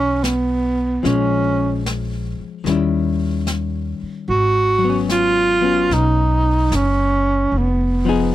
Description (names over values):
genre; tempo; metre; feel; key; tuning
jazz ballad; 74 BPM; 4/4; swing 68% on 8ths; unclear; A4 = 442 Hz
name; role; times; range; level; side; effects
breathy tenor saxophone; melody; 0.0-8.3 s; Cb4 to Gb4; -17 LUFS; right 2 dB; slapback echo
archtop guitar, miked and amplified; accompaniment; 0.0-8.3 s; Eb3 to Ab4; -22 LUFS; left 7 dB; none
upright bass; bass; 0.0-8.3 s; F1 to Eb2; -21 LUFS; equal; none
jazz brush drum kit; drums; 0.2-8.3 s; brushed snare drum, hi-hat, snare drum; -30 LUFS; left 1 dB; none
room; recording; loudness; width
light reverb; dry, close 1970s-style studio recording; -16 LUFS; side -14 dB against mid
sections
0.0-8.3 A section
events
none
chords
0.0 Eadd9; 1.0 Bbm7; 2.6 Eb7b9; 4.3 Abm7; 7.5 Fm7b5